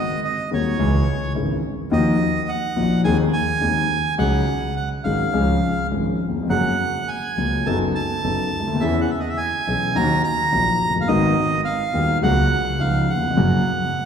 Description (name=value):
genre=tango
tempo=105 BPM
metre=4/4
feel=rubato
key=F# major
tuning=A4 = 440 Hz
part: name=bandoneon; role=melody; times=0.0-14.1 s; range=C#5 to A#5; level=-23 LUFS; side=right 4 dB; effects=none
part: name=warm concert grand piano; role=accompaniment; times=0.5-13.6 s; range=D#1 to A4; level=-21 LUFS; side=left 2 dB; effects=none
part: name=clear double bass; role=bass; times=0.5-13.6 s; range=F#1 to E2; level=-26 LUFS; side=right 1 dB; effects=none
room=wet concert hall reverb, RT60 2.3 s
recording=recorded in a church or concert hall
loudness=-18 LUFS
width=side -7 dB against mid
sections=0.0-14.1 A section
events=none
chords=0.0 G#7; 0.8 C#m; 1.9 D#madd9; 3.0 G#/D#; 4.2 C#sus4; 5.3 C#; 6.5 F#add9; 7.7 B7/F#; 8.8 E6; 10.0 D#m; 11.1 G#m7; 12.2 F#/C#; 12.8 C#add9; 13.4 F#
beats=0.23 0.79 1.35 | 1.92 2.48 3.05 3.62 | 4.18 4.76 5.33 5.91 | 6.50 7.08 7.66 8.24 | 8.81 9.38 9.96 10.52 | 11.09 11.66 12.23 12.80 | 13.37 13.94